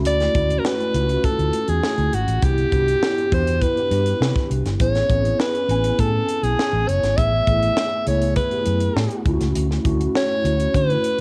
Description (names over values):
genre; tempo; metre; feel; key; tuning
polished 1980s jazz-funk pop; 101 BPM; 4/4; straight; unclear; A4 = 440 Hz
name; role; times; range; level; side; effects
mellow tine electric piano; accompaniment; 0.0-11.2 s; A3 to B5; -27 LUFS; equal; ensemble chorus, cassette tape
vintage muted fingered electric bass; bass; 0.0-11.0 s; F#1 to D3; -24 LUFS; equal; none
breathy alto saxophone; melody; 0.1-11.2 s; F#4 to E5; -24 LUFS; equal; cassette tape
crisp fusion drum kit; drums; 0.1-11.2 s; hi-hat, kick drum, snare drum; -27 LUFS; equal; cassette tape
room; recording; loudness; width
light reverb; home recording on cassette; -20 LUFS; mono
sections
0.0-11.2 A section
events
none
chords
0.0 Dmaj7; 2.4 Cmaj9; 4.8 Amaj9; 7.2 F#m11/A (rootless); 9.3 Dmaj7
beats
| 0.05 0.65 1.24 1.83 | 2.43 3.02 3.61 4.21 | 4.80 5.39 5.99 6.58 | 7.18 7.77 8.37 8.96 | 9.55 10.15 10.74